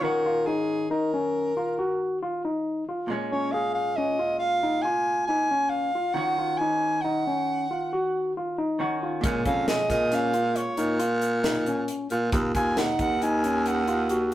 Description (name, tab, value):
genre	progressive instrumental, band music in an uneven meter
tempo	137 BPM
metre	7/4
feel	straight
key	unclear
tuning	A4 = 443 Hz
part	warm soprano saxophone	melody	0.0-14.1 s	G#4 to G#5	-26 LUFS	right 1 dB	none
part	vintage hollow-body jazz guitar	accompaniment	0.0-12.3 s	A#2 to F#4	-35 LUFS	equal	none
part	overdriven tine electric piano	arpeggios	0.0-14.3 s	C#4 to G#4	-28 LUFS	left 2 dB	none
part	raspy baritone saxophone	bass	9.2-14.3 s	D#2 to A#2	-26 LUFS	equal	none
part	crisp fusion drum kit	drums	9.2-14.3 s	hi-hat, kick drum, snare drum	-30 LUFS	equal	none
room	moderate studio reverb, RT60 0.6 s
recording	rough rehearsal-room recording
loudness	-23 LUFS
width	side -13 dB against mid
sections	0.0-14.3 A section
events	none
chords	0.0 D#m7; 3.1 A#m7; 6.2 D#m7; 9.2 A#m7; 12.3 D#m7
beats	| 0.03 0.47 0.91 1.34 1.78 2.22 2.66 | 3.09 3.53 3.97 4.41 4.84 5.28 5.72 | 6.16 6.60 7.04 7.48 7.92 8.36 8.79 | 9.23 9.68 10.12 10.56 11.00 11.44 11.88 | 12.32 12.77 13.21 13.65 14.09